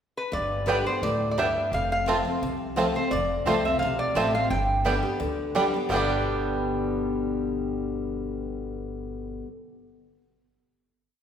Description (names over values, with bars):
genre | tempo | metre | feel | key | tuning
bluegrass | 172 BPM | 4/4 | swing 53% on 8ths | G mixolydian | A4 = 440 Hz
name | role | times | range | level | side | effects
lap resonator guitar | melody | 0.2-5.5 s | B4 to G5 | -27 LUFS | equal | none
picked steel-string acoustic guitar | accompaniment | 0.3-9.5 s | F2 to G4 | -28 LUFS | left 3 dB | none
upright bass | bass | 0.3-9.4 s | F1 to D2 | -33 LUFS | equal | none
bluegrass banjo | arpeggios | 0.7-9.5 s | G3 to G4 | -31 LUFS | right 2 dB | none
mandolin | stabs | 0.7-9.5 s | B3 to A5 | -32 LUFS | right 4 dB | none
room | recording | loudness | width
wet recital hall reverb, RT60 1.8 s | recorded in a church or concert hall | -24 LUFS | side -8 dB against mid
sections
0.0-0.3 pickup bar; 0.3-5.9 A section; 5.9-8.7 final chord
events
none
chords
0.3 G; 1.7 F; 4.5 G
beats
| 0.33 0.67 1.02 1.37 | 1.72 2.07 2.42 2.77 | 3.11 3.46 3.81 4.16 | 4.50 4.85 5.20 5.55 | 5.89 6.24 6.59 6.93 | 7.28 7.63 7.98 8.33